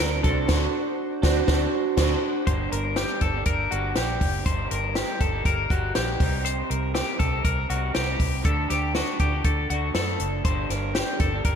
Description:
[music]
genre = jangly indie pop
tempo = 120 BPM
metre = 4/4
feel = straight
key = G harmonic minor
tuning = A4 = 440 Hz
[part]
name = chorused retro synth keys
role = accompaniment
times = 0.0-2.5 s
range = D4 to F#5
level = -26 LUFS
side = right 3 dB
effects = slapback echo
[part]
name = electric guitar through a small old amp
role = accompaniment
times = 0.0-11.6 s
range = G2 to A4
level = -32 LUFS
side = right 4 dB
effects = spring reverb, slapback echo
[part]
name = twelve-string electric guitar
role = arpeggios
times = 0.0-11.6 s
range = F#4 to C5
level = -28 LUFS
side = left 4 dB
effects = ping-pong delay
[part]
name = vintage muted fingered electric bass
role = bass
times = 0.0-11.6 s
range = F#1 to F#2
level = -28 LUFS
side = equal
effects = none
[part]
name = compact cocktail drum kit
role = drums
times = 0.2-11.6 s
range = crash cymbal, hi-hat, kick drum, snare drum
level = -25 LUFS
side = equal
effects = none
[sound]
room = moderate lush hall reverb, RT60 1.9 s, small room ambience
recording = big arena sound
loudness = -22 LUFS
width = side -7 dB against mid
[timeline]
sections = 0.0-2.5 A section; 2.5-11.6 B section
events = band accent 0.5-2.5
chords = 0.0 D7; 2.5 Gm; 4.5 Eb/G; 6.2 Cm; 8.4 D; 10.4 Gm

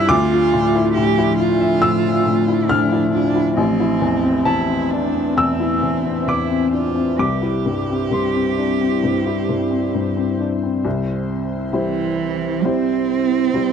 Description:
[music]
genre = neoclassical piano and strings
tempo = 67 BPM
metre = 4/4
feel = rubato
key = C major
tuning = A4 = 440 Hz
[part]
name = warm cello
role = second line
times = 0.0-13.7 s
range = E3 to G4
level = -22 LUFS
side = right 10 dB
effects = none
[part]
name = warm upright piano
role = accompaniment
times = 0.0-13.7 s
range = A1 to F6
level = -18 LUFS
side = left 3 dB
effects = none
[part]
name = ethereal airy pad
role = sustained chords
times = 0.0-13.7 s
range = F3 to E5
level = -26 LUFS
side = right 2 dB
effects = ensemble chorus, built-in reverb
[sound]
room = little or no reverb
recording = dry, close 1970s-style studio recording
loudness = -16 LUFS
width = side -7 dB against mid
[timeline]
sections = 0.0-10.9 A section; 10.9-13.7 B section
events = none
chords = 0.1 Dmadd9; 3.6 Amadd9; 7.2 C

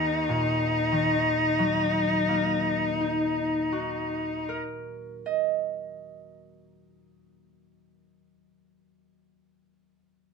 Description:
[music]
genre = classical, romantic duo for cello and harp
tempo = 31 BPM (dotted quarters)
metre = 12/8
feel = rubato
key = Eb minor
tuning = A4 = 444 Hz
[part]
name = rich cello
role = melody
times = 0.0-4.5 s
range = Eb4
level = -25 LUFS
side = left 2 dB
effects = none
[part]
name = concert harp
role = accompaniment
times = 0.0-8.9 s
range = Eb2 to Eb5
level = -29 LUFS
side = right 1 dB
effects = none
[sound]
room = light reverb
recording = minimal, uncompressed stereo recording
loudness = -24 LUFS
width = side -5 dB against mid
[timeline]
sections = 0.0-7.4 A section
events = none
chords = 0.0 Ebm

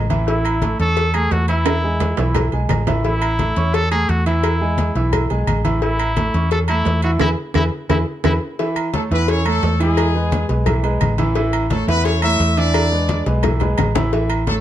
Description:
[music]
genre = latin, salsa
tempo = 173 BPM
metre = 4/4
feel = straight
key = A major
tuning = A4 = 439 Hz
[part]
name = clear grand piano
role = accompaniment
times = 0.0-14.6 s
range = E3 to C#6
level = -22 LUFS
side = right 2 dB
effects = none
[part]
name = hollow-body short-scale fingered electric bass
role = bass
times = 0.0-14.6 s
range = A1 to E2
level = -19 LUFS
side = equal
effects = none
[part]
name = agogo bells and timbales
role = percussion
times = 0.1-14.6 s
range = none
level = -26 LUFS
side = right 8 dB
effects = none
[part]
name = congas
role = percussion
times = 0.1-14.6 s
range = none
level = -25 LUFS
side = left 2 dB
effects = none
[part]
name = cowbell and bongos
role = percussion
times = 0.1-14.6 s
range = none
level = -26 LUFS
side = left 5 dB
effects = none
[part]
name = clear trumpet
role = melody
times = 0.3-8.3 s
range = E4 to A4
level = -22 LUFS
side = equal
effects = none
[part]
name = claves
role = percussion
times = 0.4-14.5 s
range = none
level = -32 LUFS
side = left 8 dB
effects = none
[part]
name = bright horn section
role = melody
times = 8.9-14.6 s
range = G#3 to E5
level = -21 LUFS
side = equal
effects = none
[sound]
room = light reverb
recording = dark, warm production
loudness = -16 LUFS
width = side -12 dB against mid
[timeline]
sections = 0.0-8.6 A section; 8.6-14.6 B section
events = drum fill 1.7-3.0, 13.4-14.1; band accent 7.2-8.6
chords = 0.3 A; 1.7 E; 3.0 A; 4.4 E; 5.8 A; 7.2 E; 8.6 A; 10.0 E; 11.4 A; 12.7 E7

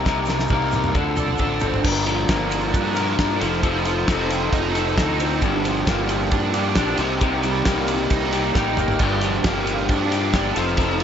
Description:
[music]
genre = indie rock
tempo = 134 BPM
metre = 4/4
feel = straight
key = G minor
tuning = A4 = 440 Hz
[part]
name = crunchy overdriven guitar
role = riff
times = 0.0-11.0 s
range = G2 to Bb4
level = -24 LUFS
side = right 8 dB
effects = ensemble chorus, tape echo
[part]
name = electric guitar through a small old amp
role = riff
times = 0.0-11.0 s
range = G2 to Bb4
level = -24 LUFS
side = left 10 dB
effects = none
[part]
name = fuzz fingered electric bass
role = bass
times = 0.0-11.0 s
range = F1 to G2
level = -26 LUFS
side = equal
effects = overdrive
[part]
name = cloth-damped thuddy drum kit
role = drums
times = 0.1-11.0 s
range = crash cymbal, kick drum, ride cymbal, snare drum, toms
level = -24 LUFS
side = right 1 dB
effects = none
[part]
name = tube shaker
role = percussion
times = 0.1-10.9 s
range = none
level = -44 LUFS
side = left 8 dB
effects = none
[sound]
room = small room ambience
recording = nothing above 7.7 kHz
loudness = -18 LUFS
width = side -8 dB against mid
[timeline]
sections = 0.0-1.9 A section; 1.9-11.0 B section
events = drum fill 0.1-1.9, 8.6-9.0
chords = 0.0 Cm7; 1.0 Dm7; 1.9 Gm7; 3.4 F7; 5.4 Gm7; 7.0 Cm7; 9.0 Gm7

